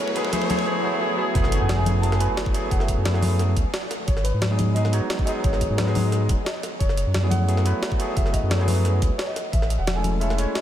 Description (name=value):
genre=liquid drum and bass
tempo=176 BPM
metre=4/4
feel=straight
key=F# dorian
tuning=A4 = 444 Hz
part: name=dark grand piano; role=melody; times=0.0-10.6 s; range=B4 to A5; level=-31 LUFS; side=equal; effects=analog delay
part: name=barky tine electric piano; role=accompaniment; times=0.0-10.6 s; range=F#3 to C#5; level=-27 LUFS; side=equal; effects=analog delay
part: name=rich symphonic string section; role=sustained chords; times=0.0-0.6 s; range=A3 to C#5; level=-37 LUFS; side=equal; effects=none
part: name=riser and impact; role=sound effects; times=0.0-2.7 s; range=none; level=-29 LUFS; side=equal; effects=none
part: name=electronic kick drum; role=drums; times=0.1-9.6 s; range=none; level=-24 LUFS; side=equal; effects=high-pass filter on kick
part: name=jungle sampler-style drum kit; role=drums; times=0.2-10.6 s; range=hi-hat, snare drum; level=-30 LUFS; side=equal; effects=none
part: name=congas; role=percussion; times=0.3-10.1 s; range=none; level=-31 LUFS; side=left 4 dB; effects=none
part: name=warm sub bass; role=bass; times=1.4-10.5 s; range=D#1 to G#2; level=-22 LUFS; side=equal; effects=none
room=moderate huge ambient reverb, RT60 6.7 s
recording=dreamy mix soaked in reverb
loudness=-20 LUFS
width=side -11 dB against mid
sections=0.0-1.4 A section; 1.4-10.6 B section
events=build-up 0.0-1.4; drum fill 0.0-0.7; riser 0.0-0.7; drop 1.4-10.6; impact 1.4-2.7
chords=0.0 F#m11; 3.9 G#m7; 6.8 F#m11; 9.5 Amaj7